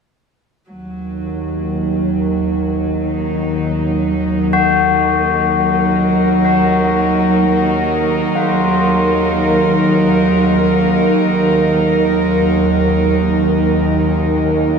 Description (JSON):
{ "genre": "dark ambient drone", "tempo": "free time", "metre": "none", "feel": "none", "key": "Eb minor", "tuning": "A4 = 441 Hz", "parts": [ { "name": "warm studio cello section", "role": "sustained chords", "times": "0.7-14.8 s", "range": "Gb3 to Bb4", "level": "-16 LUFS", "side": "right 2 dB", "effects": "none" }, { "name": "bowed-like drone", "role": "drone", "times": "0.9-14.8 s", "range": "Eb2 to Eb3", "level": "-18 LUFS", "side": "equal", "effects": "built-in reverb" }, { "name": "tubular bells", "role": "arpeggios", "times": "4.5-14.8 s", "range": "F4 to Gb4", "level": "-19 LUFS", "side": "left 6 dB", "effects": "tape echo" } ], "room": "wet spring reverb, RT60 2.5 s", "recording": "echo-heavy mix, lossy compression artefacts", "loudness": "-13 LUFS", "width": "side -6 dB against mid", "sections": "0.7-14.8 A section", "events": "none", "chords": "0.7 Ebm", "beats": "free time" }